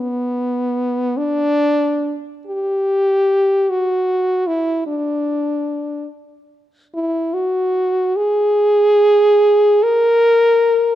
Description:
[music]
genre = classical, free, expressive piece for unaccompanied French horn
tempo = 49 BPM (dotted quarters)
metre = 6/8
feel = uneven beats, rubato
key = unclear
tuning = A4 = 438 Hz
[part]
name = mellow French horn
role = solo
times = 0.0-10.9 s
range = B3 to A#4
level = -14 LUFS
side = equal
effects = none
[sound]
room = light reverb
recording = close, detailed microphones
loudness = -14 LUFS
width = side -12 dB against mid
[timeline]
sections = 0.0-10.9 A section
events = none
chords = none

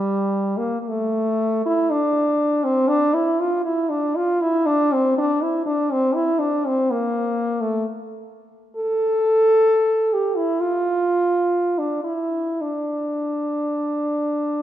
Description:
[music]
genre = classical, free, expressive piece for unaccompanied French horn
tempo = 34-66 BPM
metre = 4/4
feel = rubato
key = D minor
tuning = A4 = 441 Hz
[part]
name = warm French horn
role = solo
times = 0.0-14.6 s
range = G3 to A4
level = -19 LUFS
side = equal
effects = none
[sound]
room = wet concert hall reverb, RT60 2.0 s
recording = none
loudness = -18 LUFS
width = side -12 dB against mid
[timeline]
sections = 0.9-14.6 A section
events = none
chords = none

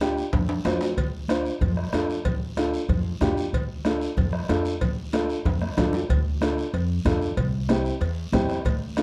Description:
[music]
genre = latin, cumbia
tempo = 187 BPM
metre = 4/4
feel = straight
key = D minor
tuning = A4 = 440 Hz
[part]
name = dark upright piano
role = accompaniment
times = 0.0-9.0 s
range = C4 to C5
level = -27 LUFS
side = equal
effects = none
[part]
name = upright bass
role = bass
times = 0.0-9.0 s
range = C2 to F2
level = -30 LUFS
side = equal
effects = none
[part]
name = bombo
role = percussion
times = 0.0-9.0 s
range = none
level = -30 LUFS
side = equal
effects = none
[part]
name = congas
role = percussion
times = 0.0-9.0 s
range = none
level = -34 LUFS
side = equal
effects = none
[part]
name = cowbell and timbales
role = percussion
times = 0.0-9.0 s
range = none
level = -36 LUFS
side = equal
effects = none
[part]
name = guiro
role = percussion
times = 0.0-9.0 s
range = none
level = -46 LUFS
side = equal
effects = none
[sound]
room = light reverb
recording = dry, close 1970s-style studio recording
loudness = -25 LUFS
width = mono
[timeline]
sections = 0.0-6.1 A section; 6.1-9.0 B section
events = drum fill 0.3-1.0, 5.5-6.1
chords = 0.0 Dm; 7.4 C

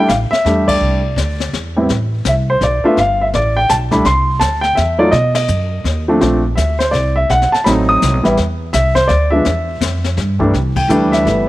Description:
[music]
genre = jazz piano trio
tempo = 166 BPM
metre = 3/4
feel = swing 63% on 8ths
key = A minor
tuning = A4 = 439 Hz
[part]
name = warm grand piano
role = melody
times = 0.0-11.5 s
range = C2 to D#6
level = -14 LUFS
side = equal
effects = none
[part]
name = upright bass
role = bass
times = 0.1-11.5 s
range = G1 to B2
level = -17 LUFS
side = equal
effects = none
[part]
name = jazz brush drum kit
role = drums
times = 0.1-11.5 s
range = brushed snare drum, hi-hat, kick drum, ride cymbal, snare drum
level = -23 LUFS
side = left 5 dB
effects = none
[sound]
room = studio ambience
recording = 1960s-style stereo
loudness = -12 LUFS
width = side -16 dB against mid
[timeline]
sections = 0.0-1.9 A section; 1.9-10.5 B section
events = band accent 0.6, 5.3, 10.7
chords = 0.0 C69; 1.9 Amadd9; 3.0 Gadd9; 4.1 C6; 5.1 B; 6.2 Bbadd9; 7.3 B7b9; 8.4 E5; 9.5 N.C.; 10.2 Gsus2; 10.5 C69

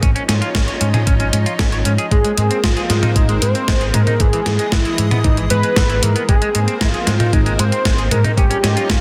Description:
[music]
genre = synthwave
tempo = 115 BPM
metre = 4/4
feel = straight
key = Ab major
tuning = A4 = 442 Hz
[part]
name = lush unison pad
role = sustained chords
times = 0.0-9.0 s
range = E3 to D#5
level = -28 LUFS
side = equal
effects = chorus, sidechain pumping
[part]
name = semi-hollow electric guitar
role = riff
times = 0.0-9.0 s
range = E3 to Db5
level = -27 LUFS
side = equal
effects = subtle chorus, low-pass filter, tape echo
[part]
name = picked electric bass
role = bass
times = 0.0-9.0 s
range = Ab1 to Ab2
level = -21 LUFS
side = equal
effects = sidechain pumping
[part]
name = electronic kick drum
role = drums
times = 0.0-9.0 s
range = none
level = -20 LUFS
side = equal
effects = none
[part]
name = gated 80s digital drum machine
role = drums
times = 0.0-9.0 s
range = hi-hat, snare drum, toms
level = -22 LUFS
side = equal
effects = gated reverb, gated reverb snare
[part]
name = unison lead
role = melody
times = 2.1-9.0 s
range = Eb4 to C5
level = -23 LUFS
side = equal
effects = tape echo
[sound]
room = light reverb, digital ambience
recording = dense, heavily limited modern master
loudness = -16 LUFS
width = mono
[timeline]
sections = 0.0-9.0 A section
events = none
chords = 0.0 Dbadd9/Ab; 2.1 Abadd9; 4.2 Emaj7/G#; 6.3 Abadd9; 8.4 Dbadd9/Ab

